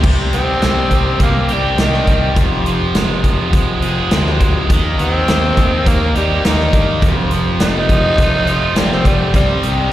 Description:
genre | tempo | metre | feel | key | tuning
classic rock | 103 BPM | 4/4 | straight | C minor | A4 = 440 Hz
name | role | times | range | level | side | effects
cranked stack guitar | riff | 0.0-9.9 s | F2 to Eb4 | -21 LUFS | left 8 dB | overdrive, slapback echo
distorted electric guitar | riff | 0.0-9.9 s | F2 to Ab4 | -20 LUFS | right 8 dB | overdrive, slapback echo
fuzz fingered electric bass | bass | 0.0-9.9 s | F1 to G2 | -19 LUFS | equal | overdrive
big rock drum kit | drums | 0.0-9.8 s | crash cymbal, hi-hat, kick drum, snare drum | -16 LUFS | equal | none
growling tenor saxophone | melody | 0.3-9.6 s | Eb3 to Eb4 | -18 LUFS | equal | none
room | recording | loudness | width
studio reverb | live gig heard through the venue's PA, recital hall reverb | -12 LUFS | side -13 dB against mid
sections
0.0-9.9 A section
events
tenor saxophone solo 0.0-9.9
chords
0.0 Cmadd9; 2.4 Fm; 4.7 Eb; 7.0 F; 9.4 Cm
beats
| 0.05 0.63 1.21 1.80 | 2.38 2.96 3.55 4.13 | 4.71 5.29 5.87 6.46 | 7.04 7.62 8.20 8.78 | 9.36

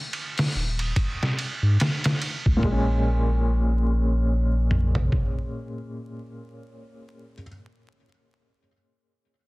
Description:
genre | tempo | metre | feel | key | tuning
trip hop | 72 BPM | 4/4 | swing 59% on 16ths | Bb minor | A4 = 435 Hz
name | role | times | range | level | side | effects
trip hop sampler-style drum kit | drums | 0.1-5.4 s | hi-hat, kick drum, ride cymbal, snare drum, toms | -24 LUFS | equal | small room ambience
warm sub bass | bass | 0.6-5.1 s | Eb1 to Ab2 | -22 LUFS | equal | none
felt-muted upright piano | accompaniment | 2.6-7.5 s | Bb2 to Db4 | -28 LUFS | left 1 dB | tremolo, tape echo
room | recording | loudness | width
digital ambience | dense, heavily limited modern master, vinyl crackle | -21 LUFS | side -22 dB against mid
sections
0.0-2.6 A section; 2.6-6.0 B section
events
none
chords
0.0 Eb7(no3); 2.6 Bbm7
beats
0.13 0.96 1.80 | 2.63 3.46 4.30 5.13

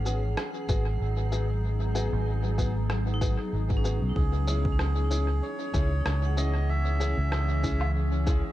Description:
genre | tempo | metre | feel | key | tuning
ambient dub | 95 BPM | 4/4 | swing 55% on 16ths | unclear | A4 = 445 Hz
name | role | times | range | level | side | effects
granular cloud pad | sustained chords | 0.0-8.5 s | E3 to G#4 | -36 LUFS | equal | built-in reverb
vibraphone with hard mallets | arpeggios | 0.0-8.5 s | C#4 to F#5 | -42 LUFS | right 1 dB | dub echo
fingered electric bass | bass | 0.0-8.4 s | G#1 to C#2 | -26 LUFS | equal | none
clear upright piano | stabs | 0.1-8.4 s | B3 to G#4 | -36 LUFS | left 4 dB | dub echo
electronic shaker, rim click and woodblock | drums | 0.1-8.4 s | none | -37 LUFS | equal | dub echo
electronic kick drum | drums | 0.7-8.4 s | none | -28 LUFS | equal | none
melodica | melody | 4.2-7.9 s | G#4 to E5 | -35 LUFS | right 2 dB | dub echo
room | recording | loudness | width
small room ambience | dark, warm production | -25 LUFS | side -14 dB against mid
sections
0.0-4.2 A section; 4.2-8.5 B section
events
none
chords
0.0 G#m7; 4.2 C#m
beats
0.37 1.00 | 1.64 2.27 2.90 3.53 | 4.16 4.79 5.42 6.06 | 6.69 7.32 7.95

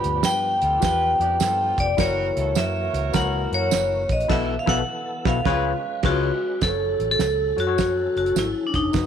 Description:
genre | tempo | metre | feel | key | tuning
uptempo 1960s-style soul | 103 BPM | 4/4 | swing 66% on 8ths | unclear | A4 = 438 Hz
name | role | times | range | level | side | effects
vibraphone with hard mallets | melody | 0.0-9.1 s | D4 to B5 | -22 LUFS | equal | none
warm horn section | second line | 0.0-6.2 s | B3 to C#5 | -33 LUFS | right 11 dB | none
overdriven tine electric piano | accompaniment | 0.0-9.1 s | G2 to C#5 | -28 LUFS | left 12 dB | auto-pan
tonewheel organ | sustained chords | 0.0-9.1 s | D#3 to B4 | -36 LUFS | equal | slow rotary speaker, overdrive, chorus vibrato
vintage muted fingered electric bass | bass | 0.0-9.1 s | E1 to G2 | -28 LUFS | equal | none
cloth-damped thuddy drum kit | drums | 0.0-9.1 s | crash cymbal, hi-hat, kick drum, snare drum | -26 LUFS | right 4 dB | none
tambourine | percussion | 0.2-9.1 s | none | -35 LUFS | right 13 dB | none
room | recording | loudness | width
moderate plate reverb, RT60 2.6 s | 1960s-style stereo with parts hard left and right | -20 LUFS | side -8 dB against mid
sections
0.0-6.6 A section; 6.6-9.1 B section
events
band accent 4.3-6.6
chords
0.0 G7; 2.0 F#7; 4.3 B7sus4; 5.5 C#7; 6.6 F#m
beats
0.24 0.82 1.40 | 1.98 2.56 3.14 3.72 | 4.30 4.88 5.46 6.04 | 6.62 7.20 7.78 8.36 | 8.94

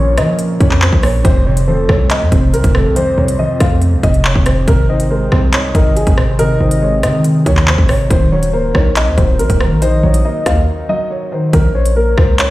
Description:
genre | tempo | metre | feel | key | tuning
hip hop, drill | 140 BPM | 4/4 | half-time | Bb minor | A4 = 440 Hz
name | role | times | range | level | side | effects
dark concert grand piano | melody | 0.0-12.5 s | Ab4 to F5 | -19 LUFS | equal | low-pass filter, digital delay
soft octave-layered synth lead | second line | 0.0-12.5 s | A4 to Eb5 | -22 LUFS | left 2 dB | chorus, digital delay
felt-muted upright piano | accompaniment | 0.0-11.6 s | F2 to Eb4 | -18 LUFS | equal | low-pass filter
hard-hitting 808-style bass | bass | 0.0-12.5 s | Db1 to F3 | -15 LUFS | equal | none
drill drum kit | drums | 0.2-12.5 s | handclaps, hi-hat, kick drum, rim click | -14 LUFS | equal | none
room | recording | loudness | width
little or no reverb | played on a big sound system in a bare room, stone room reverb | -10 LUFS | side -17 dB against mid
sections
0.0-11.5 A section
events
break 10.7-11.5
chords
0.0 Bbm; 1.2 F; 4.7 Ab; 8.1 Ebm; 11.5 Bbm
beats
0.39 0.82 | 1.25 1.68 2.10 2.53 | 2.96 3.39 3.82 4.25 | 4.68 5.11 5.53 5.96 | 6.39 6.82 7.25 7.68 | 8.11 8.53 8.96 9.39 | 9.82 10.25 10.68 11.11 | 11.53 11.96 12.39

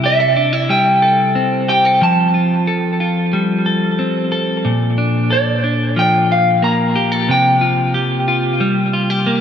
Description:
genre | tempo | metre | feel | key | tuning
dream pop | 91 BPM | 4/4 | straight | Bb lydian | A4 = 441 Hz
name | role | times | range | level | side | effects
clean electric guitar | arpeggios | 0.0-9.4 s | Bb2 to A4 | -15 LUFS | equal | wide subtle chorus, dub echo
electric guitar at the edge of break-up | melody | 0.1-8.3 s | D5 to Bb5 | -16 LUFS | equal | spring reverb, dub echo
room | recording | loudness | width
moderate plate reverb, RT60 2.4 s | echo-heavy mix | -13 LUFS | side -8 dB against mid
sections
0.0-9.4 A section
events
none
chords
0.0 Am7/C; 2.0 Fadd9; 4.7 Bbmaj7; 7.3 C7sus4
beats
0.04 0.70 1.36 | 2.02 2.68 3.34 4.00 | 4.66 5.31 5.97 6.63 | 7.29 7.95 8.61 9.27

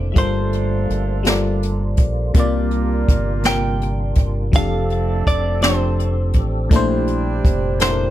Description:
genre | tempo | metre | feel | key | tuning
slow six-eight R&B | 55 BPM (dotted quarters) | 6/8 | straight | F major | A4 = 440 Hz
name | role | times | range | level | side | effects
FM electric piano | accompaniment | 0.0-8.1 s | Bb2 to D5 | -23 LUFS | left 3 dB | chorus
percussive tonewheel organ | sustained chords | 0.0-8.1 s | Bb2 to A4 | -31 LUFS | right 2 dB | chorus vibrato, slow rotary speaker
deep dub fingered electric bass | bass | 0.0-8.1 s | F1 to C2 | -21 LUFS | equal | none
semi-hollow electric guitar | melody | 0.2-8.1 s | C5 to G5 | -24 LUFS | equal | ping-pong delay
mellow horn section | stabs | 0.2-8.1 s | G3 to Bb4 | -29 LUFS | right 8 dB | ping-pong delay
jazz brush drum kit | drums | 0.2-8.0 s | hi-hat, kick drum, snare drum | -17 LUFS | equal | none
room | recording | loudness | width
little or no reverb | none | -16 LUFS | side -13 dB against mid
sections
0.0-8.1 A section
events
none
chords
0.2 Gm11; 2.3 C9sus4; 4.5 F69; 6.7 Bbmaj9#11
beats
| 0.17 1.26 | 2.35 3.44 | 4.53 5.62 | 6.71 7.80

